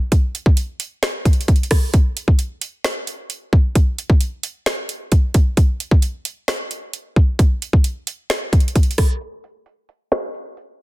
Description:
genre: hip hop.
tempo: 132 BPM.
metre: 4/4.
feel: half-time.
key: none.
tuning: none.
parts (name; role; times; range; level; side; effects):
trap drum kit; drums; 0.1-10.7 s; finger snaps, hi-hat, kick drum, rim click, snare drum; -15 LUFS; equal; soft clipping on snare.
room: digital ambience.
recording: dense, heavily limited modern master, low-pass filter.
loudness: -16 LUFS.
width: side -18 dB against mid.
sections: 0.0-9.2 A section; 9.2-10.8 B section.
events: filter sweep 9.2-10.8.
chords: none.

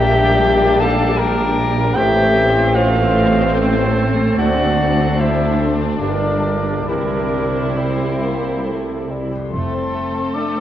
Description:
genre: classical, slow romantic movement for symphony orchestra.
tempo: 67-79 BPM.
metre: 3/4.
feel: rubato.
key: F major.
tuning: A4 = 444 Hz.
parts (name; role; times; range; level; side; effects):
muted studio violin section; melody; 0.0-10.6 s; C4 to A4; -26 LUFS; left 4 dB; none.
clear clarinet; second line; 0.0-9.1 s; C4 to Bb4; -24 LUFS; left 2 dB; none.
hollow concert flute; second line; 0.0-10.6 s; G4 to D6; -23 LUFS; left 1 dB; none.
mellow cor anglais; second line; 0.0-9.1 s; Bb4 to A5; -21 LUFS; equal; none.
muted studio violin section; second line; 0.0-10.6 s; A3 to C4; -28 LUFS; left 2 dB; none.
muted studio viola section; accompaniment; 0.0-10.6 s; G3 to A3; -25 LUFS; right 2 dB; none.
concert harp; arpeggios; 0.0-10.6 s; F2 to C6; -28 LUFS; left 6 dB; none.
muted studio cello section; bass; 0.0-10.2 s; D2 to C3; -24 LUFS; right 1 dB; none.
muted studio double bass section; bass; 0.0-10.2 s; F1 to D2; -25 LUFS; right 2 dB; none.
warm tuba; bass; 0.0-9.3 s; G1 to D2; -23 LUFS; right 2 dB; none.
mellow French horn section; sustained chords; 2.0-10.6 s; E3 to C5; -29 LUFS; left 2 dB; none.
dark bassoon; accompaniment; 7.8-9.5 s; G3 to Bb3; -26 LUFS; right 1 dB; none.
room: moderate scoring stage reverb, RT60 2.1 s.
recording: worn, warbling old tape, cassette tape, warbly pitch drift.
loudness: -14 LUFS.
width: side -11 dB against mid.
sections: 0.0-9.5 A section; 9.5-10.6 B section.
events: none.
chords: 0.0 Gm/Bb; 2.0 F/A; 4.4 D7; 6.0 Gm; 6.9 C; 9.5 F.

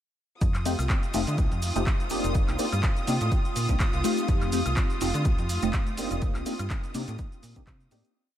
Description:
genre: filtered disco house.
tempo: 124 BPM.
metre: 4/4.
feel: swing 55% on 16ths.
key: F mixolydian.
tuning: A4 = 440 Hz.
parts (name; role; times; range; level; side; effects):
warm studio string section; sustained chords; 0.4-8.2 s; F4 to Eb6; -34 LUFS; right 1 dB; sidechain pumping.
slap-like FM bass; bass; 0.4-8.0 s; F1 to D3; -29 LUFS; equal; sidechain pumping.
electronic kick drum; drums; 0.4-7.8 s; none; -26 LUFS; equal; studio reverb.
punchy analog drum machine; drums; 0.4-8.1 s; handclaps, hi-hat, shaker, woodblock; -35 LUFS; equal; sidechain pumping on hats, studio reverb, sidechain pumping on perc.
maracas; percussion; 0.4-8.1 s; none; -43 LUFS; right 4 dB; none.
funky polysynth comp; accompaniment; 0.7-8.1 s; A3 to G4; -30 LUFS; left 1 dB; chorus, phaser, sidechain pumping.
room: moderate cathedral reverb, RT60 6.2 s.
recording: dreamy mix soaked in reverb.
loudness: -24 LUFS.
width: side -11 dB against mid.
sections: 0.4-8.2 drop.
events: drop 0.4-8.2; fade-out 5.6-8.2.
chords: 0.4 F9.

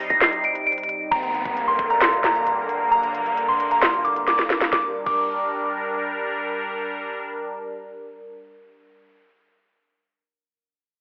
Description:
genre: hip hop, trap.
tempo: 133 BPM.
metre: 4/4.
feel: half-time.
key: G minor.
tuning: A4 = 439 Hz.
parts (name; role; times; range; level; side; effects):
soft synth bell; melody; 0.0-6.0 s; Bb5 to D7; -23 LUFS; equal; chorus, cassette tape, tape echo.
sweeping resonant pad; sustained chords; 0.0-9.1 s; G2 to Bb4; -30 LUFS; equal; chorus, cassette tape.
trap drum kit; drums; 0.1-5.2 s; crash cymbal, handclaps, hi-hat, kick drum, snare drum; -26 LUFS; equal; cassette tape.
downlifter; sound effects; 1.1-4.7 s; none; -34 LUFS; equal; none.
room: wet spring reverb, RT60 2.4 s.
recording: home recording on cassette, telephone sound.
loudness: -22 LUFS.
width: mono.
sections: 0.0-1.1 A section; 1.1-4.7 B section; 4.7-8.3 C section.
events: kick muted 0.2-1.1; drum fill 4.3-4.7.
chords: 0.0 Cm; 1.1 Gm.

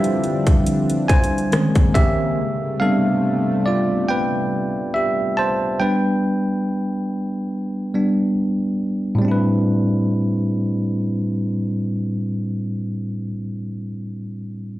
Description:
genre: contemporary R&B.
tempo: 70 BPM.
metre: 4/4.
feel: swing 54% on 16ths.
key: A minor.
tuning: A4 = 441 Hz.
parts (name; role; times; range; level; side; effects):
bell-like tine electric piano; accompaniment; 0.0-14.8 s; A2 to A5; -19 LUFS; equal; fast stereo tremolo.
warm analog pad; sustained chords; 0.0-5.8 s; C3 to D4; -23 LUFS; left 1 dB; chorus.
trap drum kit; drums; 0.0-2.2 s; hi-hat, kick drum, rim click; -16 LUFS; equal; none.
room: little or no reverb.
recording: played on a big sound system in a bare room, stone room reverb.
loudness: -18 LUFS.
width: side -15 dB against mid.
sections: 0.0-9.2 A section; 9.2-12.7 B section.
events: tine electric piano solo 0.0-9.2.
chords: 0.0 Dm11; 1.5 Bbm11; 2.4 Am11; 5.8 G; 9.2 Am11.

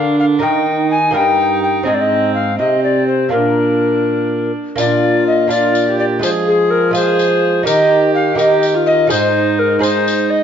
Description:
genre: classical, renaissance-style consort dance.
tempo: 83 BPM (dotted quarters).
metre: 6/8.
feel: straight.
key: Bb mixolydian.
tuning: A4 = 440 Hz.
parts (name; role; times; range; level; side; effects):
alto recorder; melody; 0.0-10.4 s; Ab4 to Ab5; -15 LUFS; left 2 dB; none.
warm viola; second line; 0.0-10.4 s; C4 to Ab4; -18 LUFS; right 2 dB; none.
lute; accompaniment; 0.0-10.4 s; G2 to C5; -19 LUFS; right 3 dB; none.
clear trombone; bass; 0.0-10.4 s; G2 to F3; -21 LUFS; equal; none.
tambourine; percussion; 4.8-10.3 s; none; -26 LUFS; left 4 dB; none.
room: wet stone room reverb, RT60 1.3 s.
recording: dark, warm production, nothing above 7.5 kHz.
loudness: -12 LUFS.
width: side -8 dB against mid.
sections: 0.0-4.8 A section; 4.8-10.4 A section.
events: none.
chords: 0.4 Eb; 1.9 Ab; 3.3 Bb; 6.2 Fm; 7.7 Eb; 9.1 Ab.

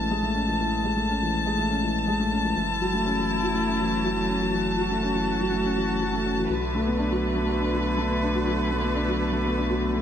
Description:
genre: electronica.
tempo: 122 BPM.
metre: 4/4.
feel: straight.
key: F# minor.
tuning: A4 = 444 Hz.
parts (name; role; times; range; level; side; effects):
warm string quartet; sustained chords; 0.0-10.0 s; D3 to A5; -27 LUFS; equal; none.
dark upright piano; riff; 0.0-10.0 s; E3 to D4; -25 LUFS; left 1 dB; low-pass filter, ping-pong delay.
warm sub bass; bass; 0.0-10.0 s; F#1 to B1; -32 LUFS; right 1 dB; none.
room: moderate huge ambient reverb, RT60 4.7 s.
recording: none.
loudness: -22 LUFS.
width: side -9 dB against mid.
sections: 0.0-10.0 A section.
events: filter sweep on upright piano 0.0-10.0.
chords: 0.0 Amaj7; 2.6 F#m7; 6.5 Bm7.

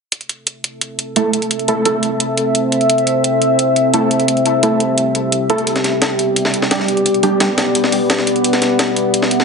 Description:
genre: dark technical drum and bass.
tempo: 173 BPM.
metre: 4/4.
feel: straight.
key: A minor.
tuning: A4 = 441 Hz.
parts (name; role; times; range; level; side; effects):
deep dark ambient pad; sustained chords; 1.0-9.4 s; B3 to E5; -15 LUFS; left 1 dB; chorus, built-in reverb.
electronic hi-hat; drums; 0.1-9.4 s; none; -20 LUFS; right 2 dB; none.
orchestra-hit-like synth stab; stabs; 1.2-7.5 s; G3 to A4; -18 LUFS; right 2 dB; built-in reverb, ping-pong delay.
breakbeat sampler-style drum kit; drums; 5.7-9.4 s; hi-hat, snare drum; -18 LUFS; equal; high-pass filter on hats, high-pass filter on snare.
room: moderate digital room reverb, RT60 1.0 s, digital ambience.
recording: heavily compressed radio sound, multiband compression, nothing above 10.8 kHz.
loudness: -13 LUFS.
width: side -4 dB against mid.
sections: 0.1-9.4 A section.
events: none.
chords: 0.1 Am; 5.7 G.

